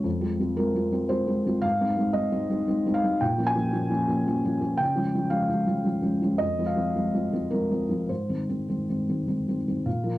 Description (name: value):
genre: neoclassical minimalist piano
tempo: 101-116 BPM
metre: 3/4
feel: rubato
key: unclear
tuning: A4 = 440 Hz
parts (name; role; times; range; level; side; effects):
- felt-muted upright piano; solo; 0.0-10.2 s; F2 to Ab5; -23 LUFS; equal; none
room: light reverb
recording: dry, close 1970s-style studio recording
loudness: -23 LUFS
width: side -16 dB against mid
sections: 0.0-9.9 A section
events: none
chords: 0.0 Fm; 1.6 Ab; 3.2 Bbm; 4.8 Db; 6.4 Fm; 8.1 Ab